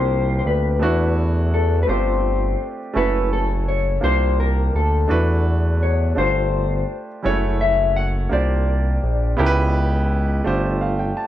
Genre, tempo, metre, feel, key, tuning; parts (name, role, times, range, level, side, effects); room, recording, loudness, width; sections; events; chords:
slow six-eight R&B; 56 BPM (dotted quarters); 6/8; straight; A4 = 440 Hz
mellow electric guitar; melody; 0.0-10.8 s; A4 to F#5; -23 LUFS; left 5 dB; lush chorus, slapback echo
warm grand piano; accompaniment; 0.0-11.3 s; C#3 to A5; -24 LUFS; right 3 dB; plate reverb
smooth synth bass; bass; 0.0-11.1 s; F#1 to E2; -19 LUFS; equal
light reverb; dark, warm production; -17 LUFS; side -12 dB against mid
0.0-11.3 A section
grand piano fill 10.4-11.3
0.0 C9sus4; 0.8 E9sus4; 1.9 G9sus4; 2.9 F#m7; 4.0 C9sus4; 5.1 E9sus4; 6.2 G9sus4; 7.2 F#m7; 8.3 C9sus4; 9.4 C#m7b5; 10.4 G9sus4